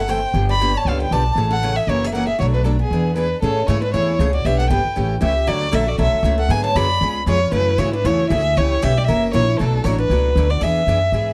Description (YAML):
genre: acoustic string swing (jazz manouche)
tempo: 234 BPM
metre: 4/4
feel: swing 55% on 8ths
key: A major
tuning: A4 = 442 Hz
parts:
  - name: warm violin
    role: melody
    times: 0.0-11.3 s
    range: G#4 to B5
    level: -22 LUFS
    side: equal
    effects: plate reverb
  - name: picked steel-string acoustic guitar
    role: second line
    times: 0.0-11.3 s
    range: B3 to D5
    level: -30 LUFS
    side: equal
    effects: slapback echo
  - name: upright bass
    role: bass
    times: 0.0-11.3 s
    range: F#1 to A2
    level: -22 LUFS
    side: equal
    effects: none
  - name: picked steel-string acoustic guitar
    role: accompaniment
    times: 0.1-11.3 s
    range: B2 to A4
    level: -27 LUFS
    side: equal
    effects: none
room: light reverb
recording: dark, warm production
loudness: -18 LUFS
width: mono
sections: 0.0-3.4 A section; 3.4-11.3 B section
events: none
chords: 0.3 G9; 1.4 Amaj7; 1.9 F#7; 2.4 Bm7; 2.9 E7; 3.4 Amaj7; 4.5 Em7; 5.0 A7; 5.5 Dmaj7; 6.5 G#m7b5; 7.0 C#7; 7.5 F#m9; 8.6 C#m7b5; 9.1 F#7; 9.6 Bm7; 10.6 E7